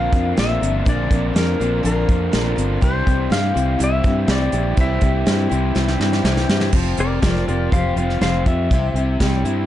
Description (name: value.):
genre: folk rock and heartland rock.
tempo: 122 BPM.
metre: 4/4.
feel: straight.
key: unclear.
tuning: A4 = 440 Hz.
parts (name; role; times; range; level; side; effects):
clean lap steel guitar; melody; 0.0-9.4 s; Bb4 to F5; -24 LUFS; left 2 dB; analog delay.
picked steel-string acoustic guitar; accompaniment; 0.0-9.7 s; Bb2 to Bb4; -25 LUFS; left 4 dB; none.
tonewheel organ; sustained chords; 0.0-6.7 s; E3 to C5; -32 LUFS; equal; none.
raw garage guitar; riff; 0.0-9.7 s; Bb2 to G4; -25 LUFS; right 2 dB; overdrive.
fingered electric bass; bass; 0.0-9.7 s; F1 to G2; -21 LUFS; equal; none.
soft brush drum kit; drums; 0.1-9.6 s; crash cymbal, hi-hat, kick drum, snare drum; -20 LUFS; equal; none.
room: little or no reverb.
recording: dark, warm production, nothing above 10.8 kHz.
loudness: -16 LUFS.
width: side -12 dB against mid.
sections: 0.0-6.7 A section; 6.7-9.7 B section.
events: drum fill 5.8-6.7; electric slide guitar solo 6.7-9.7.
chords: 0.0 Bbadd9; 2.8 C; 6.7 Fsus2; 8.7 C.